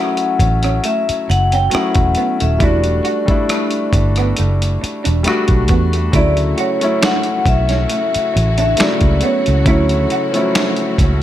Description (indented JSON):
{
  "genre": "R&B, neo-soul",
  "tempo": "68 BPM",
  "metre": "4/4",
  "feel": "swing 53% on 16ths",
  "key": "D major",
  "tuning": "A4 = 439 Hz",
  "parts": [
    { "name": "vibraphone with medium mallets", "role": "melody", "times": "0.0-11.0 s", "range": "C#5 to G5", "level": "-19 LUFS", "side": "left 1 dB", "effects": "analog delay" },
    { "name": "electric guitar through a small old amp", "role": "second line", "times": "0.0-11.0 s", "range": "A3 to F#4", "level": "-25 LUFS", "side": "right 7 dB", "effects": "lush chorus" },
    { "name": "clear concert grand piano", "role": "accompaniment", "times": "0.0-11.2 s", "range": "C#3 to F#4", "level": "-20 LUFS", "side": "left 2 dB", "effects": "none" },
    { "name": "dusty soul sampler-style drum kit", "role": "drums", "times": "0.2-11.2 s", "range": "finger snaps, hi-hat, kick drum, rim click, snare drum", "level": "-18 LUFS", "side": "equal", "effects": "none" },
    { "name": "vintage muted fingered electric bass", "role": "bass", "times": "0.4-11.2 s", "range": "Eb1 to E2", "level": "-16 LUFS", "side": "equal", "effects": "none" },
    { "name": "warm studio string section", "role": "sustained chords", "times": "6.1-11.2 s", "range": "C#3 to F#4", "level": "-26 LUFS", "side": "equal", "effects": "none" }
  ],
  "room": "light reverb, studio reverb",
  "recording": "none",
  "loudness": "-13 LUFS",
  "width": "side -12 dB against mid",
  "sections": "0.0-6.1 A section; 6.1-11.2 A section",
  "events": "none",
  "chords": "0.0 F#m7; 2.6 Em11; 6.1 Dmaj9"
}